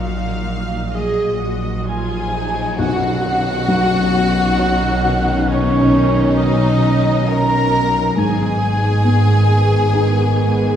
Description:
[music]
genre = cinematic, emotional film score for orchestra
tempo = 67 BPM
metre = 3/4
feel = rubato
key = B lydian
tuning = A4 = 441 Hz
[part]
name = rich studio violin section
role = melody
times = 0.0-10.8 s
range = C#5 to A#5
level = -29 LUFS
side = left 2 dB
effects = none
[part]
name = rich studio violin section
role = second line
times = 0.0-10.8 s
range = C#4 to E#5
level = -23 LUFS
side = left 2 dB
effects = none
[part]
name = warm oboe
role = second line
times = 0.0-10.6 s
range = C#5 to A#5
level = -26 LUFS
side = right 2 dB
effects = none
[part]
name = felt-muted upright piano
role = accompaniment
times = 0.0-10.8 s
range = B1 to C#5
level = -23 LUFS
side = left 2 dB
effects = none
[part]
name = rich studio viola section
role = accompaniment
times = 0.0-10.8 s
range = B3 to G#4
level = -24 LUFS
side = right 1 dB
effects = none
[part]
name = concert harp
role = arpeggios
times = 0.0-10.8 s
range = G#2 to C#5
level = -24 LUFS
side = left 4 dB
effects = none
[part]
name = warm studio cello section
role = bass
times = 0.0-10.8 s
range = G#2 to B2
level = -20 LUFS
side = right 2 dB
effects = none
[part]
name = warm studio double bass section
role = bass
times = 0.0-10.8 s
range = G#1 to B1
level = -23 LUFS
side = right 2 dB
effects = none
[part]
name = cymbal swell and tam-tam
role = percussion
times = 0.0-6.3 s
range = none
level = -31 LUFS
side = right 1 dB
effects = none
[part]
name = mellow hollow small flute group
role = second line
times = 1.9-10.6 s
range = C#5 to A#5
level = -25 LUFS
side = left 2 dB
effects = none
[part]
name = dark French horn section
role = sustained chords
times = 2.8-10.8 s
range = D#3 to C#4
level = -23 LUFS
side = equal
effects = none
[sound]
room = wet scoring stage reverb, RT60 1.5 s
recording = heard from further back in the room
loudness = -14 LUFS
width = side -9 dB against mid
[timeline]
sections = 0.0-2.8 A section; 2.8-10.8 B section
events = band accent 2.8-3.7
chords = 0.0 D#m/A#; 2.8 Badd9; 8.2 G#m

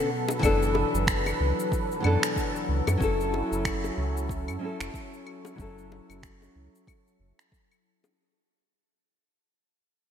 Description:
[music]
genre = sunset chillout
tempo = 93 BPM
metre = 4/4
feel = swing 58% on 16ths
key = F# minor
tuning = A4 = 440 Hz
[part]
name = nylon-string guitar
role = accompaniment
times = 0.0-7.2 s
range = E3 to A4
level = -29 LUFS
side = left 2 dB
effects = auto-pan, low-pass filter, ping-pong delay, shimmer reverb
[part]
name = lush unison pad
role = sustained chords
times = 0.0-8.1 s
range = B2 to B4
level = -33 LUFS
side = equal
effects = chorus, phaser, shimmer reverb
[part]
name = electronic cabasa, claves and finger snaps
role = drums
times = 0.3-8.1 s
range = none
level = -33 LUFS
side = right 1 dB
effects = overdrive, gated reverb
[part]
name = bongos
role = percussion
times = 0.3-8.1 s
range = none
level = -35 LUFS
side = left 4 dB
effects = none
[part]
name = round analog bass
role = bass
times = 0.4-7.3 s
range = F#1 to F#2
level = -28 LUFS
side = equal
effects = none
[part]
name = electronic kick drum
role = drums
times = 0.4-7.7 s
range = none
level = -31 LUFS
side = equal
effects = overdrive
[sound]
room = moderate lush hall reverb, RT60 2.8 s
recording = bright 1980s-style digital production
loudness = -24 LUFS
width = side -8 dB against mid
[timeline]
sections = 0.0-8.2 A section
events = fade-out 0.0-8.2; filter sweep on nylon-string guitar 0.0-8.2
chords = 0.1 E7sus4/F#; 3.0 F#m7

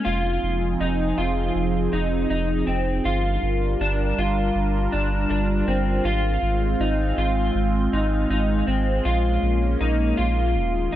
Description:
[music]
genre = dream pop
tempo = 80 BPM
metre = 4/4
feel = straight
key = F minor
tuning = A4 = 440 Hz
[part]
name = phased analog pad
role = sustained chords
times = 0.0-11.0 s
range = Eb3 to Bb4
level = -26 LUFS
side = right 2 dB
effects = phaser, chorus
[part]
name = electric guitar through a small old amp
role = arpeggios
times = 0.0-11.0 s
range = C4 to F4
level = -25 LUFS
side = left 1 dB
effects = analog chorus, tape echo
[part]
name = warm sub bass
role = bass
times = 0.1-11.0 s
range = Eb1 to Bb1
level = -24 LUFS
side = equal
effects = none
[sound]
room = light reverb, digital ambience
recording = dark, warm production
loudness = -20 LUFS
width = side -12 dB against mid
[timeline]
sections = 0.0-11.0 A section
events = none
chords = 0.1 Fm7; 3.1 Gm7; 6.1 Ab6; 9.1 Bbm7

